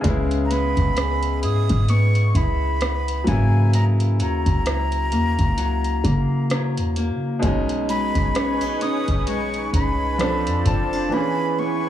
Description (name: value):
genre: contemporary R&B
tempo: 65 BPM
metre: 4/4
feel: swing 58% on 16ths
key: C# dorian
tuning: A4 = 440 Hz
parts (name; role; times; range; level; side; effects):
- clear grand piano; accompaniment; 0.0-11.9 s; B2 to A4; -27 LUFS; equal; none
- lush unison pad; sustained chords; 0.0, 8.0-11.9 s; D#4 to A5; -30 LUFS; right 1 dB; chorus
- picked old ladder-braced acoustic guitar; arpeggios; 0.0-11.9 s; B2 to G#4; -27 LUFS; left 2 dB; tape echo
- clean 808-style bass; bass; 0.0-11.1 s; F1 to C#3; -22 LUFS; equal; none
- booming analog drum machine; drums; 0.0-10.9 s; hi-hat, kick drum, rim click; -24 LUFS; equal; vintage 12-bit sampler grit
- soft round pluck; texture; 0.0-0.8 s; none; barely audible; none; none
- breathy concert flute; melody; 0.5-11.9 s; G#5 to D#6; -27 LUFS; equal; tape echo
room: digital ambience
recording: small room ambience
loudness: -18 LUFS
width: side -11 dB against mid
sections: 0.0-11.9 A section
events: none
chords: 0.0 C#m7; 3.3 F#7/C#; 7.4 B69; 10.2 F6; 11.1 E6